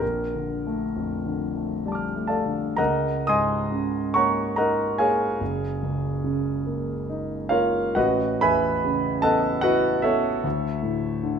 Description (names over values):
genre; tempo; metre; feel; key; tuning
classical, impressionist solo piano; 58-77 BPM; 3/4; rubato; unclear; A4 = 441 Hz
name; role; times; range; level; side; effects
warm concert grand piano; solo; 0.0-11.4 s; Gb1 to F6; -22 LUFS; equal; none
room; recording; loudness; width
moderate recital hall reverb, RT60 1.5 s; minimal, uncompressed stereo recording; -22 LUFS; side -7 dB against mid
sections
0.0-2.8 A section; 2.8-11.4 B section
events
none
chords
0.0 Bbmaj7; 2.8 Db69; 5.4 Gb69; 8.0 A69; 10.4 Dsus2